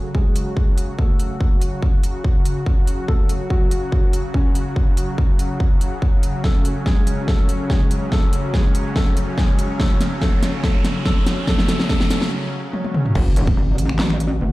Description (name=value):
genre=heavy wobble dubstep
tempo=143 BPM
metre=4/4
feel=half-time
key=F# minor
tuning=A4 = 440 Hz
part: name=supersaw pad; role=sustained chords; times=0.0-14.5 s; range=C#3 to F#4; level=-26 LUFS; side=equal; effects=sidechain pumping, low-pass filter
part: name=felt-muted upright piano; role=melody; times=0.1-12.3 s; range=C#3 to A4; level=-28 LUFS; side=left 1 dB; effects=low-pass filter, ping-pong delay
part: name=electronic kick drum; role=drums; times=0.1-13.6 s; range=none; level=-18 LUFS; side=equal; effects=small room ambience
part: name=big-room dance drum kit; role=drums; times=0.4-14.3 s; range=crash cymbal, finger snaps, handclaps, hi-hat, snare drum, toms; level=-23 LUFS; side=equal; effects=small room ambience
part: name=riser and impact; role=sound effects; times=7.6-14.5 s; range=none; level=-30 LUFS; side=equal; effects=none
part: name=metallic wobble bass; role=bass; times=13.2-13.6 s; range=F#1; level=-20 LUFS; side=equal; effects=chorus, overdrive
part: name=pulsing pluck wobble bass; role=bass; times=13.6-14.5 s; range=F#1 to A1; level=-20 LUFS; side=equal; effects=chorus, overdrive
room=digital ambience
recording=played on a big sound system in a bare room, large studio reverb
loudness=-16 LUFS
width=side -19 dB against mid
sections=0.0-13.2 A section; 13.2-14.5 B section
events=build-up 0.0-13.2; filter sweep on felt piano 0.0-13.2; drum fill 6.4-12.3, 12.7-13.2; riser 7.6-12.3; break 12.3-13.2; drop 13.2-14.5; impact 13.2-14.5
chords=0.0 F#m